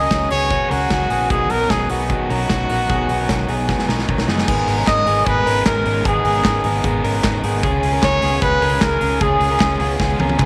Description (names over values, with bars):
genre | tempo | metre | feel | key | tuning
jangly indie pop | 152 BPM | 4/4 | straight | unclear | A4 = 439 Hz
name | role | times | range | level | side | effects
clear trumpet | melody | 0.0-10.0 s | F#4 to D#5 | -22 LUFS | equal | slapback echo
cranked stack guitar | accompaniment | 0.0-10.5 s | G#2 to A#4 | -25 LUFS | equal | overdrive
direct-recorded clean electric guitar | arpeggios | 0.0-10.5 s | B3 to A#4 | -27 LUFS | equal | slapback echo
vintage muted fingered electric bass | bass | 0.0-10.5 s | F#1 to C#2 | -26 LUFS | equal | none
big rock drum kit | drums | 0.1-10.5 s | crash cymbal, hi-hat, kick drum, snare drum, toms | -24 LUFS | equal | none
group handclap | percussion | 4.9-10.5 s | none | -35 LUFS | equal | none
room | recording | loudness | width
wet spring reverb, RT60 1.9 s, small room ambience | none | -18 LUFS | mono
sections
0.0-4.5 A section; 4.5-10.5 B section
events
drum fill 3.7-4.5, 10.0-10.5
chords
0.0 F#sus2; 1.3 B; 4.5 G#madd9; 7.6 C#